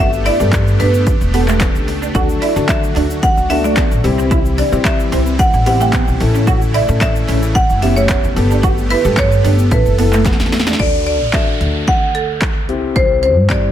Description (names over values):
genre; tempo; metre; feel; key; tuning
dance-pop; 111 BPM; 4/4; straight; D major; A4 = 441 Hz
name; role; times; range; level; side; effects
marimba with medium hard mallets; melody; 0.0-13.7 s; A4 to G5; -18 LUFS; equal; none
dark grand piano; accompaniment; 0.0-13.7 s; B3 to A4; -22 LUFS; left 6 dB; sidechain pumping
supersaw chords; sustained chords; 0.0-10.8 s; C3 to A4; -24 LUFS; equal; sidechain pumping
electric guitar at the edge of break-up; riff; 0.0-10.8 s; A3 to F#4; -21 LUFS; right 5 dB; ensemble chorus
upright bass; bass; 0.0-13.7 s; E1 to D3; -17 LUFS; equal; sidechain pumping
punchy analog drum machine; drums; 0.1-13.6 s; handclaps, hi-hat, kick drum, shaker, snare drum; -16 LUFS; equal; none
group handclap; percussion; 0.5-10.4 s; none; -33 LUFS; left 2 dB; none
downlifter; sound effects; 10.8-13.7 s; none; -26 LUFS; equal; none
room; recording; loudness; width
light reverb, small room reverb; none; -12 LUFS; side -11 dB against mid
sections
0.0-10.8 A section; 10.8-13.7 B section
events
drum fill 10.3-10.8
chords
0.0 Gadd9; 2.1 D; 4.0 C; 6.2 A; 8.4 Gadd9; 9.7 Asus2; 10.8 D; 12.7 C